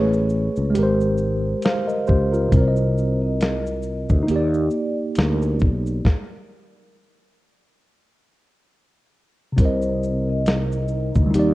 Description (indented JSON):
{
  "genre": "lo-fi hip hop",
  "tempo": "68 BPM",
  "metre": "4/4",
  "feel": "swing 55% on 16ths",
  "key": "C minor",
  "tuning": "A4 = 441 Hz",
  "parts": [
    { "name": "mellow tine electric piano", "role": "accompaniment", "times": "0.0-11.5 s", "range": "C3 to F5", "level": "-22 LUFS", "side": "right 1 dB", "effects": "medium stereo tremolo, low-pass filter" },
    { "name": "sustaining fretless electric bass", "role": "bass", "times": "0.0-11.5 s", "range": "Ab1 to Eb2", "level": "-22 LUFS", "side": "equal", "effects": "none" },
    { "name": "dusty soul sampler-style drum kit", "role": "drums", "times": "0.1-11.5 s", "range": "hi-hat, kick drum, shaker, snare drum", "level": "-20 LUFS", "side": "equal", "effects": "none" },
    { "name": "vibraphone with soft mallets", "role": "melody", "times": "2.5-11.3 s", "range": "Bb4 to Eb5", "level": "-30 LUFS", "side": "left 1 dB", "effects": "low-pass filter" },
    { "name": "deep dark ambient pad", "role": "sustained chords", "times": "10.2-11.5 s", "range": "C4 to Bb4", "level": "-32 LUFS", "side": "left 2 dB", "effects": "chorus, built-in reverb, low-pass filter" }
  ],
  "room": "little or no reverb",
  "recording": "rough home demo mix, cassette tape",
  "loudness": "-18 LUFS",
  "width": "side -18 dB against mid",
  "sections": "0.0-9.6 A section; 9.6-11.5 A section",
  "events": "stop 6.0-9.6",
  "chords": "0.0 Amaj9; 0.8 Abmaj9; 2.5 Cm7; 4.3 Ebmaj7; 6.0 N.C.; 9.6 Cm7",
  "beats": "0.76 1.64 | 2.52 3.40 4.29 5.17 | 6.05 6.93 7.82 8.70 | 9.58 10.46 11.35"
}